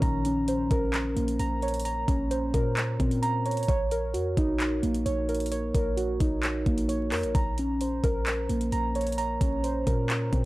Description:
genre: hip hop, trap.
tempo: 131 BPM.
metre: 4/4.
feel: half-time.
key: Bb minor.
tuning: A4 = 439 Hz.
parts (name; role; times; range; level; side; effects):
concert harp; accompaniment; 0.0-2.7 s; Db4; -32 LUFS; left 2 dB; none.
muted felt-like synth keys; arpeggios; 0.0-10.5 s; Bb3 to Bb5; -28 LUFS; right 1 dB; chorus, analog delay.
clean 808-style bass; bass; 0.0-10.5 s; Bb1 to Bb2; -31 LUFS; equal; none.
trap drum kit; drums; 0.0-10.4 s; handclaps, hi-hat, kick drum; -29 LUFS; equal; none.
room: little or no reverb.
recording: dry, gritty hardware recording, vinyl crackle.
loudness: -25 LUFS.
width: side -18 dB against mid.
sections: 0.0-10.5 A section.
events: none.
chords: 0.0 Bbmadd9; 3.7 Ebm7/Bb; 7.3 Bbmadd9.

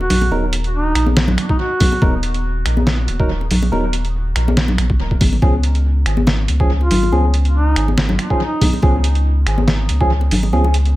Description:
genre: deep dubstep.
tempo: 141 BPM.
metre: 4/4.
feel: swing 54% on 16ths, half-time.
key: Eb minor.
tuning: A4 = 439 Hz.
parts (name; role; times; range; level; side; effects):
warm duduk; melody; 0.0-2.2, 6.8-8.7 s; Eb4 to Gb4; -24 LUFS; equal; dub echo.
saturated sub bass; bass; 0.0-11.0 s; Eb1 to Db2; -16 LUFS; equal; none.
congas; percussion; 0.0-10.7 s; none; -22 LUFS; left 1 dB; dub echo.
trip hop sampler-style drum kit; drums; 0.1-10.9 s; finger snaps, hi-hat, snare drum; -21 LUFS; equal; tape echo.
barky tine electric piano; stabs; 0.3-10.6 s; F3 to Bb4; -24 LUFS; right 2 dB; overdrive, dub echo.
electronic kick drum; drums; 1.5-10.1 s; none; -16 LUFS; equal; none.
room: light reverb, digital ambience.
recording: echo-heavy mix.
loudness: -14 LUFS.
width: side -17 dB against mid.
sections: 0.0-11.0 A section.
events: none.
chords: 0.0 Eb5; 5.4 Db.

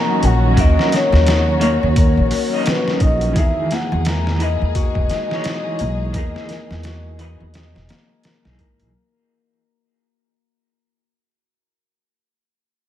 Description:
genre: trip hop.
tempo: 86 BPM.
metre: 4/4.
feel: swing 58% on 16ths.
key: unclear.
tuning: A4 = 441 Hz.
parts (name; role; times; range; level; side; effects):
pure breathy sine lead; melody; 0.0-8.2 s; Cb5 to Bb5; -22 LUFS; left 2 dB; lush chorus, tape echo.
electric guitar through a small old amp; accompaniment; 0.0-8.9 s; D#3 to Eb5; -24 LUFS; right 1 dB; tremolo, tape echo.
dark chamber string section; sustained chords; 0.0-8.9 s; Eb3 to G#4; -28 LUFS; equal; none.
Celtic harp; arpeggios; 0.0-11.1 s; Bb3 to Bb4; -25 LUFS; left 4 dB; tape echo.
upright bass; bass; 0.2-8.9 s; E1 to G#2; -18 LUFS; equal; none.
trip hop sampler-style drum kit; drums; 0.2-8.9 s; hi-hat, kick drum, snare drum; -20 LUFS; equal; studio reverb.
room: light reverb, studio reverb.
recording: vinyl crackle.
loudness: -15 LUFS.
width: side -12 dB against mid.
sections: 0.0-8.9 A section.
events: fade-out 1.5-8.9.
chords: 0.0 Ebm7; 3.4 Emaj7.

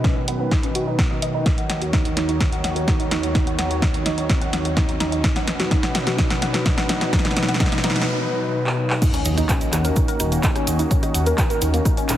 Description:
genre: melodic techno.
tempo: 127 BPM.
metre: 4/4.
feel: straight.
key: Eb minor.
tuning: A4 = 444 Hz.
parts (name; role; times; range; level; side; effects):
warm analog pad; sustained chords; 0.0-12.2 s; Eb2 to Db5; -26 LUFS; left 1 dB; chorus, sidechain pumping.
woody wave-folded pluck; arpeggios; 0.0-12.2 s; Bb3 to Gb5; -26 LUFS; right 1 dB; analog chorus, sidechain pumping, digital delay.
analog drone; drone; 0.0-12.2 s; Eb3; -33 LUFS; right 1 dB; none.
electronic kick drum; drums; 0.0-11.9 s; none; -21 LUFS; equal; none.
punchy analog drum machine; drums; 0.0-12.2 s; crash cymbal, handclaps, hi-hat, rim click, snare drum; -24 LUFS; equal; sidechain pumping on hats, sidechain pumping on cymbals.
riser, noise sweep and impact; sound effects; 0.3-10.9 s; none; -33 LUFS; equal; none.
cabasa; percussion; 9.0-12.2 s; none; -32 LUFS; right 3 dB; none.
swelling detuned saw bass; bass; 9.3-12.2 s; Eb1 to Eb2; -21 LUFS; equal; sidechain pumping.
room: moderate concert hall reverb, RT60 1.9 s.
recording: heavily compressed radio sound.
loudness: -18 LUFS.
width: side -12 dB against mid.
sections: 0.0-9.0 A section; 9.0-12.2 B section.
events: build-up 0.0-9.0; drum fill 0.0-8.1, 8.7-9.0; filter sweep on synth pluck 0.0-9.0; noise sweep 7.1-9.0; break 8.1-9.0; drop 9.0-12.2; impact 9.0-10.9.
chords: 0.0 B; 1.5 Ebm7; 5.2 B; 9.0 Ebm7.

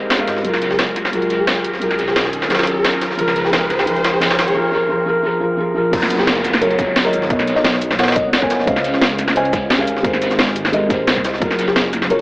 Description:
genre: liquid drum and bass.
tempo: 175 BPM.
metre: 4/4.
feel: straight.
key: F# major.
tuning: A4 = 436 Hz.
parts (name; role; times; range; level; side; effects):
felt-muted upright piano; accompaniment; 0.0-12.2 s; E#3 to G#5; -19 LUFS; equal; dub echo.
airy breathy pad; sustained chords; 0.0-4.6 s; D#3 to B#4; -26 LUFS; equal; chorus, sidechain pumping.
dark detuned saw bass; bass; 0.0-12.2 s; F#1 to G#2; -26 LUFS; equal; none.
riser and downlifter; sound effects; 0.0-8.7 s; none; -24 LUFS; equal; none.
drum and bass drum kit; drums; 0.1-12.2 s; crash cymbal, hi-hat, shaker, snare drum; -20 LUFS; equal; overdrive, high-pass filter on hats, high-pass filter on snare, high-pass filter on cymbals, high-pass filter on perc, dub echo.
jungle sampler-style drum kit; drums; 0.1-12.2 s; hi-hat, snare drum; -21 LUFS; equal; overdrive, high-pass filter on hats, high-pass filter on snare.
bell-like FM electric piano; melody; 0.7-8.4, 11.7-12.2 s; G#4 to D#5; -24 LUFS; left 1 dB; chorus, phaser, dub echo.
electronic kick drum; drums; 5.9-11.5 s; none; -20 LUFS; equal; overdrive.
room: wet spring reverb, RT60 1.3 s.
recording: echo-heavy mix, AM radio sound.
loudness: -14 LUFS.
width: side -22 dB against mid.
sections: 0.0-5.9 A section; 5.9-12.2 B section.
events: build-up 0.0-5.9; riser 0.0-4.6; drop 5.9-12.2.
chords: 0.4 F#maj9; 1.8 Bmaj9; 3.2 C#maj9; 4.4 G#maj9; 5.9 F#maj9; 7.3 Bmaj9; 8.7 C#maj9; 9.9 G#maj9; 11.4 F#maj9.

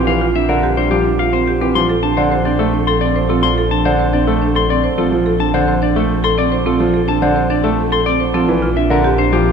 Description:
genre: classical, minimalist pattern music.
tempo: 107 BPM.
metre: 3/4.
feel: straight.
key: unclear.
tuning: A4 = 440 Hz.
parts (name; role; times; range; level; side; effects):
semi-hollow electric guitar; melody; 0.0-9.5 s; G4 to C6; -19 LUFS; left 8 dB; none.
bright grand piano; accompaniment; 0.0-9.5 s; D3 to C4; -18 LUFS; right 1 dB; none.
marimba with hard mallets; arpeggios; 0.0-9.4 s; C4 to D5; -18 LUFS; right 4 dB; none.
rich double bass; bass; 0.0-9.5 s; Bb1; -19 LUFS; right 1 dB; none.
room: wet cathedral reverb, RT60 6.3 s.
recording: recorded in a church or concert hall.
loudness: -13 LUFS.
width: side -6 dB against mid.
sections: 0.0-9.5 A section.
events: none.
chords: 0.0 Bb69; 1.8 F/Bb; 8.5 Bb6.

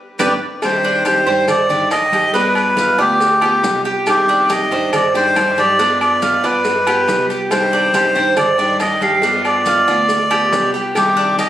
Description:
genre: latin, Cuban son and guajira.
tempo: 139 BPM.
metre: 4/4.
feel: straight.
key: C harmonic minor.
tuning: A4 = 441 Hz.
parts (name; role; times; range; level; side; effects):
melodica; melody; 0.2-11.5 s; G4 to F5; -15 LUFS; equal; slapback echo.
picked steel-string acoustic guitar; accompaniment; 0.2-11.5 s; C3 to G4; -23 LUFS; left 2 dB; none.
Cuban tres; arpeggios; 0.2-11.5 s; D4 to D5; -20 LUFS; right 3 dB; none.
upright bass; bass; 0.2-11.5 s; G1 to G2; -30 LUFS; right 2 dB; none.
bongos and cowbell; percussion; 0.2-11.5 s; none; -26 LUFS; left 2 dB; none.
claves; percussion; 0.2-11.2 s; none; -29 LUFS; left 3 dB; none.
congas; percussion; 0.2-11.5 s; none; -30 LUFS; left 2 dB; none.
maracas; percussion; 0.2-11.5 s; none; -34 LUFS; left 3 dB; none.
timbales and agogo bells; percussion; 0.2-11.5 s; none; -25 LUFS; right 1 dB; none.
room: light reverb.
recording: recorded on a phone in the room, studio reverb, compression.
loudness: -12 LUFS.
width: side -12 dB against mid.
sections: 0.6-11.5 A section.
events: drum fill 0.0-0.6; band accent 0.0-0.6.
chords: 0.0 G; 0.6 Cmadd9; 2.3 G7; 4.1 Cmadd9; 5.8 G7; 7.5 Cmadd9; 9.2 G7; 11.0 Cmadd9.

